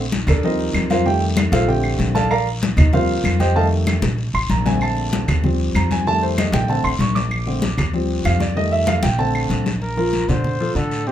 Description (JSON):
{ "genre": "Afro-Cuban jazz", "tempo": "192 BPM", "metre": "4/4", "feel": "straight", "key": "Bb major", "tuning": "A4 = 440 Hz", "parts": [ { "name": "dark concert grand piano", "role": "accompaniment", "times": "0.0-11.1 s", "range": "C3 to D6", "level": "-20 LUFS", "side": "right 1 dB", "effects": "none" }, { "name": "upright bass", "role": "bass", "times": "0.0-11.1 s", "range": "A1 to Bb2", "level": "-21 LUFS", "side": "equal", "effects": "none" }, { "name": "congas", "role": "percussion", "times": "0.1-11.1 s", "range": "none", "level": "-23 LUFS", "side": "left 3 dB", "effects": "none" }, { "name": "guiro", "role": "percussion", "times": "0.1-11.1 s", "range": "none", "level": "-32 LUFS", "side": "left 3 dB", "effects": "none" }, { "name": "claves", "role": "percussion", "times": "0.3-9.5 s", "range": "none", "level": "-29 LUFS", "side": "right 2 dB", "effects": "none" }, { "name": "mellow trumpet", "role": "melody", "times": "9.8-11.1 s", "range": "G4 to C5", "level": "-26 LUFS", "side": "left 1 dB", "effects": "none" } ], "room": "wet club ambience, RT60 0.5 s", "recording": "minimal, uncompressed stereo recording", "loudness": "-16 LUFS", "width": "side -11 dB against mid", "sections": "0.0-9.8 A section; 9.8-11.1 B section", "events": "grand piano solo 0.0-9.8", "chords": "0.4 Eb69; 1.1 F7; 1.7 Bbmaj7; 2.9 Eb69; 3.6 F7; 4.2 Bbmaj7; 5.4 Eb69; 6.1 F7; 6.7 Bbmaj7; 7.9 Eb69; 8.6 F7; 9.2 Bbmaj7; 9.8 Bbmaj9", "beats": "0.12 0.43 0.75 | 1.06 1.37 1.68 2.00 | 2.31 2.62 2.94 3.25 | 3.56 3.87 4.19 4.50 | 4.81 5.12 5.44 5.75 | 6.06 6.38 6.69 7.00 | 7.32 7.63 7.94 8.25 | 8.57 8.88 9.19 9.50 | 9.82 10.13 10.44 10.76 | 11.07" }